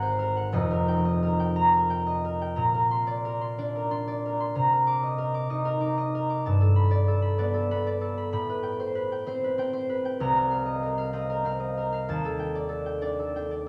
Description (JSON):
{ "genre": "classical, solo harp piece", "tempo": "58-65 BPM (dotted quarters)", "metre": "6/8", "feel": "rubato", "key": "unclear", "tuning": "A4 = 438 Hz", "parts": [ { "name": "concert harp", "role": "solo", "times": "0.0-13.7 s", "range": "F1 to D6", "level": "-26 LUFS", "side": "equal", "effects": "none" } ], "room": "wet recital hall reverb, RT60 1.3 s", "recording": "none", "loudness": "-27 LUFS", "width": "mono", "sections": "0.0-2.6 A section; 2.6-13.7 B section", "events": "none", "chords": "0.0 Ab9; 0.5 F9sus4; 2.6 Bbadd9; 4.5 Cm9; 6.5 Gadd9; 8.3 Am9; 10.2 Cm7; 12.1 Ebmaj7#11" }